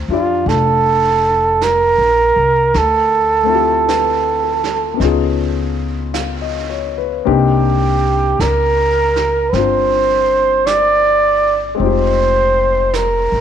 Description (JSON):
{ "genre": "jazz ballad", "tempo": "53 BPM", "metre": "4/4", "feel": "swing 66% on 8ths", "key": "Bb major", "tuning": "A4 = 442 Hz", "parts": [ { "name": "clear grand piano", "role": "accompaniment", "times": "0.0-13.4 s", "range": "Ab3 to F5", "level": "-21 LUFS", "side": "left 14 dB", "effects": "none" }, { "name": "upright bass", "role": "bass", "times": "0.0-13.4 s", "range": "F1 to F2", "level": "-20 LUFS", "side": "left 1 dB", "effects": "none" }, { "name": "breathy flugelhorn", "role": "melody", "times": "0.1-13.4 s", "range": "F4 to D5", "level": "-13 LUFS", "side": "right 3 dB", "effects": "none" }, { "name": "vintage brush drum kit", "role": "drums", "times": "0.5-13.4 s", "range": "brushed snare drum, hi-hat, snare drum", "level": "-29 LUFS", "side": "right 8 dB", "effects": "none" } ], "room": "light reverb, small room ambience", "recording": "1960s-style stereo with parts hard left and right", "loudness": "-12 LUFS", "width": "side -9 dB against mid", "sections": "0.0-13.4 A section", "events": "none", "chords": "0.0 Bbmaj9; 2.7 Dm11; 5.0 Db9; 7.3 Cm9; 11.8 Fm9" }